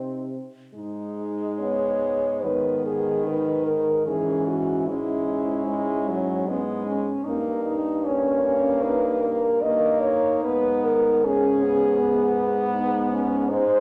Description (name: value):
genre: classical, lyrical piece for horn quartet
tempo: 68-81 BPM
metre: 4/4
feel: rubato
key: G# minor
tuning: A4 = 439 Hz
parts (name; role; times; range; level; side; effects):
- mellow French horn; melody; 0.0-13.8 s; Eb4 to D#5; -25 LUFS; equal; none
- warm French horn; second line; 0.0-13.8 s; B3 to D#4; -31 LUFS; equal; none
- clear French horn; accompaniment; 0.0-13.8 s; D#3 to C#4; -30 LUFS; equal; none
- mellow French horn; bass; 0.0-13.8 s; G2 to C3; -34 LUFS; equal; none
room: wet recital hall reverb, RT60 1.4 s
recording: none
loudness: -23 LUFS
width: mono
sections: 0.8-13.8 A section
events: none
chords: 0.0 Cm; 0.8 G#m; 4.1 C#m/G#; 7.3 D#7/G; 10.5 G#m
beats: | 0.75 1.61 2.46 3.26 | 4.07 4.89 5.67 6.47 | 7.27 8.05 8.84 9.64 | 10.45 11.24 12.00 12.75 | 13.51